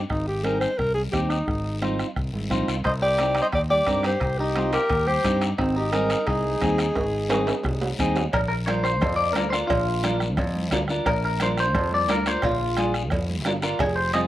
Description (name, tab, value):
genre	latin, cumbia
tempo	175 BPM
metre	4/4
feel	straight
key	unclear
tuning	A4 = 439 Hz
part	fingered electric bass	bass	0.0-14.3 s	F1 to G2	-27 LUFS	equal	none
part	breathy alto saxophone	melody	0.1-8.0 s	Eb4 to Eb5	-25 LUFS	equal	none
part	bombo	percussion	0.1-14.3 s	none	-31 LUFS	equal	none
part	guiro	percussion	0.1-14.3 s	none	-37 LUFS	left 5 dB	slapback echo
part	clean electric guitar	accompaniment	0.4-14.3 s	C4 to Bb4	-27 LUFS	equal	none
part	congas	percussion	0.4-14.3 s	none	-33 LUFS	right 3 dB	none
part	timbales and cowbell	percussion	2.8-14.3 s	none	-31 LUFS	right 3 dB	slapback echo
part	clean electric guitar	second line	2.9-14.2 s	C4 to Eb5	-26 LUFS	left 1 dB	slapback echo
room	little or no reverb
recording	recorded outdoors, with no room sound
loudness	-21 LUFS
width	side -14 dB against mid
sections	0.0-8.3 A section; 8.3-14.3 B section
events	drum fill 7.0-8.3; clean electric guitar solo 8.3-14.3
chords	0.1 Ab; 2.9 Cmadd9; 5.6 Ab; 8.3 Bb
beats	| 0.10 0.45 0.79 1.14 | 1.48 1.82 2.16 2.51 | 2.85 3.19 3.54 3.88 | 4.22 4.56 4.91 5.25 | 5.59 5.93 6.28 6.62 | 6.96 7.30 7.65 7.99 | 8.33 8.67 9.01 9.36 | 9.70 10.04 10.38 10.72 | 11.06 11.40 11.74 12.09 | 12.43 12.77 13.11 13.45 | 13.79 14.13